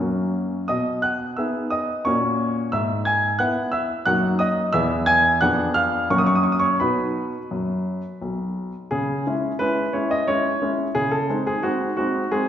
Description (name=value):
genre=classical-period piano sonatina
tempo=88 BPM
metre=3/4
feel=straight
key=B major, C# minor from 8.9 s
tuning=A4 = 440 Hz
part: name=clear baby grand piano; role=solo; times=0.0-12.5 s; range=B1 to G#6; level=-20 LUFS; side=equal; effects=none
room=wet recital hall reverb, RT60 1.5 s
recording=recorded in a church or concert hall, nothing above 7.8 kHz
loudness=-20 LUFS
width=side -10 dB against mid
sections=0.0-8.9 A section; 8.9-12.5 B section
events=none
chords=0.0 F#; 0.7 G#m/B; 2.1 F#/A#; 2.7 E/G#; 4.1 D#m/F#; 4.7 E; 5.4 Fdim7; 6.1 F#; 6.8 B; 8.9 C#m; 11.0 G#/C#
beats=0.00 | 0.70 1.38 2.06 | 2.73 3.40 4.07 | 4.74 5.41 6.10 | 6.80 7.51 8.21 | 8.91 9.60 10.28 | 10.96 11.64 12.31